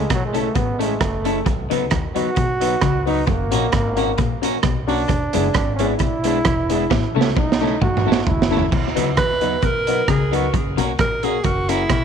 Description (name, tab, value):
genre	ska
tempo	132 BPM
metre	4/4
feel	swing 54% on 8ths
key	B major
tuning	A4 = 440 Hz
part	bright trombone	melody	0.0-8.7 s	F#3 to F#4	-24 LUFS	right 2 dB	tape echo
part	clean electric guitar	accompaniment	0.0-11.9 s	F#3 to F#4	-27 LUFS	right 13 dB	none
part	upright bass	bass	0.0-12.0 s	E1 to D#2	-26 LUFS	left 1 dB	none
part	clean electric guitar	riff	0.1-12.0 s	E2 to D#3	-28 LUFS	left 10 dB	tape echo
part	crunchy breakbeat drum kit	drums	0.1-12.0 s	crash cymbal, hi-hat, kick drum, rim click, snare drum, toms	-21 LUFS	right 3 dB	tape echo
part	warm upright piano	stabs	0.3-11.8 s	A3 to B4	-24 LUFS	left 13 dB	none
part	bright alto saxophone	melody	9.2-12.0 s	E4 to B4	-21 LUFS	right 2 dB	tape echo
room	light reverb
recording	1960s-style stereo with parts hard left and right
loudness	-17 LUFS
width	side -7 dB against mid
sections	0.0-8.7 A section; 8.7-12.0 A section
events	trombone solo 0.0-8.7; drum fill 6.9-8.7; alto saxophone solo 8.7-12.0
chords	0.0 A; 1.5 B; 3.3 F#; 5.1 E7; 6.9 A; 8.7 B; 10.5 F#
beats	0.10 0.56 1.01 | 1.46 1.92 2.37 2.83 | 3.28 3.73 4.19 4.64 | 5.09 5.55 6.00 6.46 | 6.91 7.36 7.82 8.27 | 8.72 9.18 9.63 10.09 | 10.54 10.99 11.45 11.90